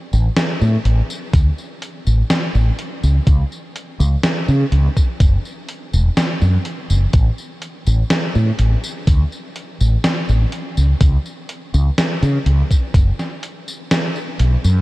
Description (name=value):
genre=vaporwave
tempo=62 BPM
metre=4/4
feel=straight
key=unclear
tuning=A4 = 440 Hz
part: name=mellow fretless electric bass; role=bass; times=0.1-14.8 s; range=E1 to C#3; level=-14 LUFS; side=equal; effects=tube saturation, lush chorus
part: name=gated 80s digital drum machine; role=drums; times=0.1-14.8 s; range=hi-hat, snare drum, tambourine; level=-23 LUFS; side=equal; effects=gated reverb, gated reverb snare
part: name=electronic kick drum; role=drums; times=1.3-13.1 s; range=none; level=-13 LUFS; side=equal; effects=none
room=light reverb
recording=cassette tape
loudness=-15 LUFS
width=side -19 dB against mid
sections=0.0-14.8 A section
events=kick drops out 13.9-14.8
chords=none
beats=0.36 1.33 2.30 | 3.27 4.24 5.20 6.17 | 7.14 8.11 9.07 10.04 | 11.01 11.98 12.95 13.91